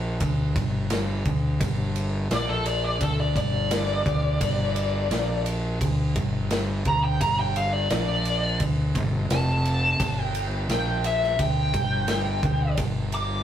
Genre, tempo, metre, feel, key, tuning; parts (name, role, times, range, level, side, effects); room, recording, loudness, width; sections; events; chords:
blues rock power trio and southern rock; 86 BPM; 4/4; straight; A4 = 440 Hz
fuzz fingered electric bass; bass; 0.0-13.4 s; F1 to D2; -25 LUFS; equal; overdrive
big rock drum kit; drums; 0.2-13.3 s; kick drum, ride cymbal, snare drum; -28 LUFS; equal
smooth overdriven lead guitar; melody; 2.3-13.4 s; A4 to D6; -26 LUFS; left 1 dB; wah
light reverb; rough rehearsal-room recording; -22 LUFS; side -10 dB against mid
0.0-13.4 A section
lead electric guitar solo 0.0-13.4
0.0 G5